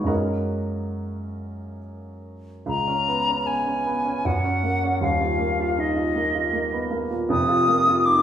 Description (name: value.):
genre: classical, impressionist duo for flute and grand piano.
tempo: 68-80 BPM.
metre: 3/4.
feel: rubato.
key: F# major.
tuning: A4 = 440 Hz.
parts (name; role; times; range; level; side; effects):
warm baby grand piano; accompaniment; 0.0-8.2 s; D#1 to C#6; -24 LUFS; right 1 dB; none.
silver concert flute; melody; 2.7-8.2 s; D#5 to Eb6; -22 LUFS; left 2 dB; none.
room: wet stone room reverb, RT60 1.2 s.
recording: heard from further back in the room.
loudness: -20 LUFS.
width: side -9 dB against mid.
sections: 0.0-2.7 A section; 2.7-8.2 B section.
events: none.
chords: 0.1 F#add9; 2.7 C#5; 4.2 F#; 5.0 D#sus2; 7.3 F7sus4.